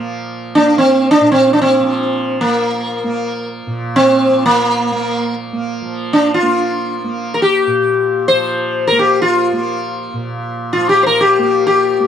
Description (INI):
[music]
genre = indian classical, Hindustani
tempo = free time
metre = none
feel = none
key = Bb raga bhupali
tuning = A4 = 440 Hz
[part]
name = tanpura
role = drone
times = 0.0-12.1 s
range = Bb2 to Bb3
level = -22 LUFS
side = right 3 dB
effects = none
[part]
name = sitar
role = melody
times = 0.6-12.1 s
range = Bb3 to C5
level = -12 LUFS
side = left 1 dB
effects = none
[sound]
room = light reverb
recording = dark, warm production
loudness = -12 LUFS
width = side -9 dB against mid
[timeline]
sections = 0.0-5.8 A section; 5.8-12.1 A section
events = none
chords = none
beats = free time